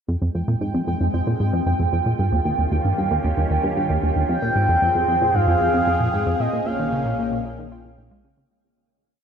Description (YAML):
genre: ambient, sequencer-driven space music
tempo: 114 BPM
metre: 4/4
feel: straight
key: F minor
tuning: A4 = 440 Hz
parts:
  - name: phased analog pad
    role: sustained chords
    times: 0.1-8.5 s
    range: Bb2 to Ab4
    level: -26 LUFS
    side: equal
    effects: phaser, chorus, shimmer reverb
  - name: plucky analog bass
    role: riff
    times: 0.1-8.5 s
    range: Eb2 to F4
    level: -22 LUFS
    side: equal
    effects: analog delay
  - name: analog drone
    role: bass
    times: 1.4-8.5 s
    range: Bb1 to F2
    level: -34 LUFS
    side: equal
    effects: none
  - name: pulsing gated texture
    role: texture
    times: 0.5-8.5 s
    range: G5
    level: -28 LUFS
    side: right 5 dB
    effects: chorus, built-in reverb, shimmer reverb
  - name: expressive synth lead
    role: melody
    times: 4.3-7.5 s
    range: Eb5 to G5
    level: -22 LUFS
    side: left 1 dB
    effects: chorus, shimmer reverb, analog delay
room: wet huge ambient reverb, RT60 8.0 s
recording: in a vast, echoing space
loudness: -18 LUFS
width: side -7 dB against mid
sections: 0.1-8.5 A section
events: fade-in on analog synth pad 0.1-8.5; fade-out 5.7-8.5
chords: 0.1 Fm; 2.2 Eb7; 4.3 Fm; 6.4 Bbm7